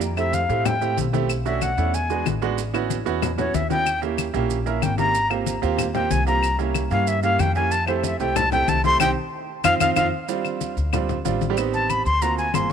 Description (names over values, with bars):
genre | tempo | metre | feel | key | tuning
Afro-Cuban jazz | 187 BPM | 4/4 | straight | unclear | A4 = 440 Hz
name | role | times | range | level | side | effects
upright bass | bass | 0.0-12.7 s | G1 to A2 | -26 LUFS | left 1 dB | none
congas | percussion | 0.0-12.7 s | none | -29 LUFS | left 12 dB | none
maracas | percussion | 0.0-12.7 s | none | -36 LUFS | right 15 dB | none
breathy jazz flute | melody | 0.2-12.7 s | C5 to C6 | -23 LUFS | left 2 dB | none
bright upright piano | accompaniment | 0.2-12.7 s | G3 to Bb4 | -25 LUFS | right 10 dB | none
claves | percussion | 0.2-12.7 s | none | -28 LUFS | left 15 dB | none
room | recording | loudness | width
moderate plate reverb, RT60 2.8 s | 1960s-style stereo with parts hard left and right | -19 LUFS | side -8 dB against mid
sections
0.0-10.3 A section; 10.3-12.7 A section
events
flute solo 0.0-12.7; band accent 9.0-10.3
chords
0.0 Fmaj9; 1.3 Bm9; 1.9 E9; 2.6 A69; 3.9 Eb7b9; 5.1 Abmaj13; 6.4 C7b9; 7.7 Fmaj9; 9.0 Cm; 9.6 F5; 10.3 F69; 11.6 Am7b5; 12.2 D7alt